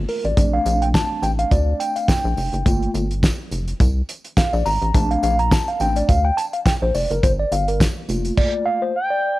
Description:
early-eighties boogie funk; 105 BPM; 4/4; swing 56% on 16ths; Bb major; A4 = 441 Hz
mellow tine electric piano; accompaniment; 0.0-9.4 s; A3 to Bb5; -21 LUFS; equal; medium stereo tremolo
rubbery square bass; bass; 0.0-8.3 s; F1 to D2; -21 LUFS; equal
damped 70s drum kit; drums; 0.1-8.5 s; crash cymbal, hi-hat, kick drum, snare drum; -19 LUFS; equal; cassette tape
tambourine; percussion; 0.4-8.4 s; -39 LUFS; right 3 dB
expressive portamento lead; melody; 9.0-9.4 s; G5; -20 LUFS; right 1 dB; chorus, cassette tape
light reverb, studio ambience; home recording on cassette; -17 LUFS; side -18 dB against mid
0.0-9.4 A section
tine electric piano solo 0.0-9.4
0.4 Bbmaj7; 2.7 Gm7; 4.9 Bbmaj7; 7.2 Gm7
| 0.37 0.94 1.52 2.09 | 2.66 3.23 3.80 4.37 | 4.95 5.52 6.09 6.66 | 7.23 7.80 8.37 8.95

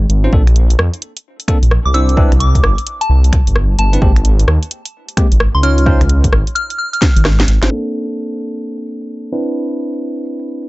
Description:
UK garage, two-step garage; 130 BPM; 4/4; swing 63% on 16ths; A4 = 439 Hz
dark detuned saw bass; bass; 0.0-7.7 s; G1 to F2; -12 LUFS; equal
garage drum kit; drums; 0.1-10.7 s; finger snaps, hi-hat, rim click, snare drum, tambourine; -19 LUFS; equal
bell-like tine electric piano; stabs; 0.2-10.7 s; Ab3 to Db5; -20 LUFS; equal; low-pass filter, tape echo
electronic kick drum; drums; 0.3-7.1 s; -14 LUFS; equal
soft synth bell; melody; 1.9-7.0 s; A5 to F6; -20 LUFS; left 1 dB; chorus, phaser, tape echo
little or no reverb; low-pass filter, nothing above 8.0 kHz; -11 LUFS; side -20 dB against mid
0.0-7.7 A section; 7.7-10.7 B section
drum fill 7.0-7.7; kick drops out 7.2-7.7; filter sweep on tine electric piano 7.7-10.7; filter sweep 7.7-10.7
0.3 Bbsus2; 1.9 Cadd9; 4.0 N.C.; 5.6 Dbadd9; 7.7 Bbmaj9; 9.3 Cmaj9
| 0.33 0.79 1.25 1.71 | 2.17 2.63 3.10 3.56 | 4.02 4.48 4.94 5.40 | 5.87 6.33 6.79 7.25 | 7.71 8.17 8.63 9.10 | 9.56 10.02 10.48

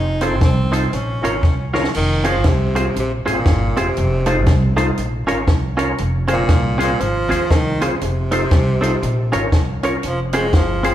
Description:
ska; 119 BPM; 4/4; swing 61% on 8ths; F minor; A4 = 440 Hz
clear tenor saxophone; melody; 0.0-10.9 s; Bb2 to Eb4; -22 LUFS; equal
upright bass; bass; 0.0-10.9 s; F1 to Eb2; -20 LUFS; equal
direct-recorded clean electric guitar; accompaniment; 0.2-10.9 s; A3 to Db5; -24 LUFS; right 2 dB; dub echo
percussive tonewheel organ; stabs; 0.2-10.9 s; C4 to Db5; -24 LUFS; left 2 dB; overdrive, chorus vibrato, slow rotary speaker, dub echo
compact cocktail drum kit; drums; 0.2-10.9 s; crash cymbal, hi-hat, kick drum, snare drum; -19 LUFS; equal
moderate large studio reverb, RT60 1.4 s; band playing live in one room, vinyl crackle; -15 LUFS; side -12 dB against mid
0.0-1.9 A section; 1.9-10.9 A section
drum fill 1.4-1.9
0.0 F7; 0.9 Bbm; 1.9 Fm; 4.0 F7; 5.0 Bbm; 6.0 Fm; 8.0 F7; 9.0 Bbm; 10.0 Fm
0.42 0.93 1.43 | 1.94 2.44 2.95 3.46 | 3.96 4.47 4.97 5.48 | 5.99 6.49 7.00 7.50 | 8.01 8.51 9.02 9.52 | 10.03 10.53

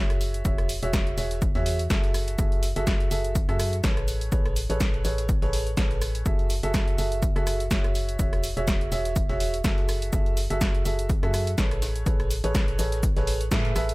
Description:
piano house; 124 BPM; 4/4; swing 55% on 16ths; F# minor; A4 = 440 Hz
clear upright piano; riff; 0.0-13.9 s; F#4 to E5; -30 LUFS; right 2 dB; sidechain pumping, dub echo
organ-like FM bass; bass; 0.0-13.9 s; E1 to A2; -29 LUFS; equal; sidechain pumping
breakbeat sampler-style drum kit; drums; 0.1-13.9 s; hi-hat, shaker, snare drum; -39 LUFS; left 1 dB; high-pass filter on snare, sidechain pumping on perc, high-pass filter on perc, sidechain pumping on hats, high-pass filter on hats
punchy analog drum machine; drums; 0.1-13.9 s; hi-hat, rim click, snare drum; -32 LUFS; equal; overdrive
electronic kick drum; drums; 0.5-13.6 s; -25 LUFS; equal; overdrive
little or no reverb; -23 LUFS; side -22 dB against mid
0.0-13.9 A section
band accent 13.5
0.2 E69; 2.1 F#m9; 4.1 Amaj9; 6.3 F#m9; 8.0 E69; 9.9 F#m9; 11.8 Amaj9
| 0.45 0.94 1.42 1.90 | 2.39 2.87 3.35 3.84 | 4.32 4.81 5.29 5.77 | 6.26 6.74 7.22 7.71 | 8.19 8.68 9.16 9.64 | 10.13 10.61 11.10 11.58 | 12.06 12.55 13.03 13.52

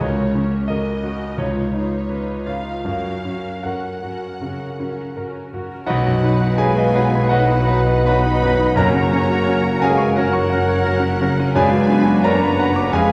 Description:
classical; 76-91 BPM; 4/4; rubato; F# major; A4 = 439 Hz
clear concert grand piano; melody; 0.0-13.1 s; B1 to D6; -22 LUFS; equal
muted symphonic violin section; melody; 0.0-13.1 s; A#4 to D#5; -34 LUFS; equal
muted symphonic violin section; second line; 0.0-13.1 s; C#5 to B5; -32 LUFS; equal
muted symphonic viola section; accompaniment; 0.0-13.1 s; C#4 to B4; -32 LUFS; equal
muted symphonic cello section; bass; 0.0-13.1 s; E#2 to C#3; -29 LUFS; equal
clear clarinet; second line; 5.9-13.1 s; C#4 to D#4; -33 LUFS; equal
clear oboe; second line; 5.9-13.1 s; A#4 to B4; -32 LUFS; equal
hollow flute section; second line; 5.9-13.1 s; C#5 to F#5; -32 LUFS; equal
dark bassoon; accompaniment; 5.9-13.1 s; F#3 to G#3; -32 LUFS; equal
bright trombone section; sustained chords; 5.9-13.1 s; E#3 to D#4; -30 LUFS; equal
dark French horn section; sustained chords; 5.9-13.1 s; F#3 to B3; -26 LUFS; equal
mellow trumpet section; stabs; 5.9-13.1 s; A#4 to B4; -29 LUFS; equal
muted symphonic double bass section; bass; 5.9-13.1 s; E#1 to B1; -28 LUFS; equal
timpani; percussion; 8.8-12.5 s; F#2; -29 LUFS; equal
wet recital hall reverb, RT60 1.4 s; recorded in a church or concert hall; -18 LUFS; mono
0.0-5.9 A section; 5.9-13.1 B section
0.0 F#/C#; 1.4 C#9; 2.9 F#; 5.9 B; 8.8 F#; 11.6 Bm/F#
| 0.03 0.70 1.40 2.11 | 2.86 3.64 4.41 5.15 | 5.88 6.59 7.31 8.07 | 8.78 9.48 10.18 10.88 | 11.56 12.24 12.92

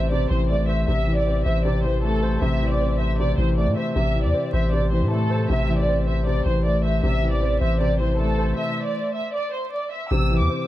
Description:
hip hop, trap; 156 BPM; 4/4; half-time; A minor; A4 = 437 Hz
warm studio violin section; melody; 0.0-10.7 s; A4 to E6; -26 LUFS; right 1 dB; low-pass filter, ping-pong delay
dark baby grand piano; accompaniment; 0.0-10.7 s; C3 to C5; -25 LUFS; left 2 dB; low-pass filter
long sustained 808-style bass; bass; 0.0-10.5 s; A1 to A2; -22 LUFS; equal
studio reverb; vinyl crackle; -20 LUFS; side -14 dB against mid
0.0-10.1 A section
stop 8.6-10.1
0.0 Am
0.11 0.50 | 0.88 1.26 1.65 2.03 | 2.42 2.80 3.19 3.57 | 3.96 4.34 4.73 5.11 | 5.50 5.88 6.26 6.65 | 7.03 7.42 7.80 8.19 | 8.57 8.96 9.34 9.73 | 10.11 10.50

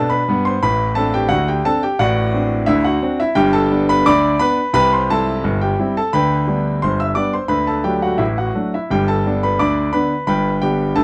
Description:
ragtime piano; 87 BPM; 2/4; straight; G major; A4 = 440 Hz
clear concert grand piano; solo; 0.0-11.0 s; G1 to E6; -17 LUFS; equal
light reverb; -17 LUFS; mono
0.0-11.0 A section
0.0 G; 0.6 D7/A; 3.4 G; 4.7 C; 6.1 G/D; 7.5 D; 8.9 G
| 0.62 1.31 | 1.99 2.68 | 3.37 4.05 | 4.74 5.43 | 6.12 6.81 | 7.51 8.20 | 8.89 9.59 | 10.27 10.96

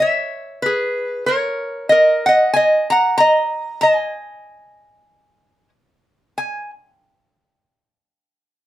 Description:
hawaiian; 94 BPM; 4/4; swing 56% on 8ths; A4 = 440 Hz
lap resonator guitar; solo; 0.0-6.7 s; G#4 to A#5; -15 LUFS; equal
light reverb; close, detailed microphones; -15 LUFS; side -13 dB against mid
0.0-6.4 A section; 6.4-8.7 B section
0.0 C#m7; 1.3 D#5; 3.8 N.C.
0.00 0.63 | 1.27 1.91 2.54 3.18 | 3.81 4.45 5.09 5.72 | 6.36

